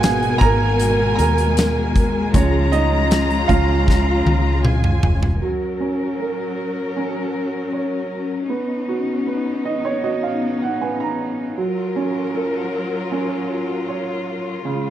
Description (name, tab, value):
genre	pop ballad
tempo	78 BPM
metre	4/4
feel	straight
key	F# major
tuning	A4 = 440 Hz
part	warm studio violin section	second line	0.0-5.4 s	G#5 to A#5	-25 LUFS	left 4 dB	none
part	clear upright piano	accompaniment	0.0-14.9 s	C#3 to A#5	-23 LUFS	right 5 dB	none
part	warm studio string section	sustained chords	0.0-14.9 s	B2 to A#4	-23 LUFS	left 3 dB	none
part	vintage muted fingered electric bass	bass	0.0-5.4 s	E#1 to D#2	-20 LUFS	equal	none
part	huge arena drum kit	drums	0.0-5.4 s	hi-hat, kick drum, snare drum, toms	-20 LUFS	equal	none
room	studio ambience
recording	dry, close 1970s-style studio recording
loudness	-17 LUFS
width	side -12 dB against mid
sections	0.0-5.4 A section; 5.4-14.9 B section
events	upright piano solo 0.0-5.4; drum fill 3.9-5.4; upright piano fill 9.3-11.6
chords	0.0 G#madd9; 2.3 C#; 5.4 F#; 8.5 Badd9; 11.6 F#maj7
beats	0.03 0.80 1.57 | 2.34 3.11 3.88 4.65 | 5.42 6.19 6.96 7.73 | 8.49 9.26 10.03 10.80 | 11.57 12.34 13.11 13.88 | 14.65